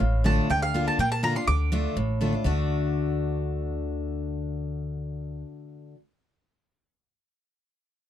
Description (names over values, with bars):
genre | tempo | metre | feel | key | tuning
bluegrass | 245 BPM | 4/4 | straight | unclear | A4 = 441 Hz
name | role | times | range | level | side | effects
mandolin | melody | 0.0-2.2 s | F5 to D6 | -27 LUFS | right 1 dB | none
picked steel-string acoustic guitar | accompaniment | 0.0-6.0 s | A2 to F#4 | -28 LUFS | left 2 dB | none
upright bass | bass | 0.0-5.4 s | A1 to Bb2 | -28 LUFS | equal | none
room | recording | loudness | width
light reverb | dark, warm production | -24 LUFS | side -11 dB against mid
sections
0.5-2.5 A section; 2.5-4.4 B section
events
none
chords
0.5 Bb/D; 1.5 Dm; 2.5 D